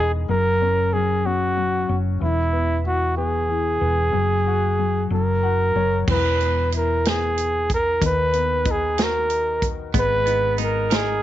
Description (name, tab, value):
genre	six-eight pop ballad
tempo	62 BPM (dotted quarters)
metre	6/8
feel	straight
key	unclear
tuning	A4 = 440 Hz
part	warm flugelhorn	melody	0.0-11.2 s	E4 to B4	-21 LUFS	right 1 dB	none
part	warm baby grand piano	accompaniment	0.0-11.2 s	D#3 to F#5	-27 LUFS	left 11 dB	none
part	hollow-body short-scale fingered electric bass	bass	0.0-11.2 s	E1 to D#2	-24 LUFS	right 1 dB	none
part	natural country drum kit	drums	6.1-11.1 s	crash cymbal, hi-hat, kick drum, snare drum	-25 LUFS	right 1 dB	none
part	direct-recorded clean electric guitar	arpeggios	9.9-11.2 s	B3 to A#4	-29 LUFS	right 15 dB	none
room	light reverb, small room ambience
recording	1960s-style stereo with parts hard left and right, nothing above 7.5 kHz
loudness	-18 LUFS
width	side -12 dB against mid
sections	0.0-6.1 A section; 6.1-11.2 B section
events	grand piano fill 5.1-6.1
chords	0.3 F#; 2.2 E; 4.1 F#sus2; 6.1 E; 8.0 B/D#; 9.9 G#madd9